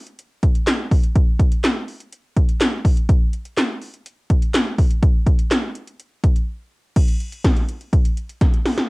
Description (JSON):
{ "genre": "pop", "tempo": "124 BPM", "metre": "4/4", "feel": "straight", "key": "none", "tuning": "none", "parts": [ { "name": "80s electronic pad drums", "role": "drums", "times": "0.1-8.9 s", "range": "crash cymbal, handclaps, hi-hat, kick drum, snare drum", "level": "-16 LUFS", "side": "equal", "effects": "none" } ], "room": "light reverb", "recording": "home recording on cassette", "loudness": "-17 LUFS", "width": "side -26 dB against mid", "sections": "0.0-7.0 A section; 7.0-8.9 B section", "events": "break 6.5-7.0; drum fill 8.4-8.9", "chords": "none" }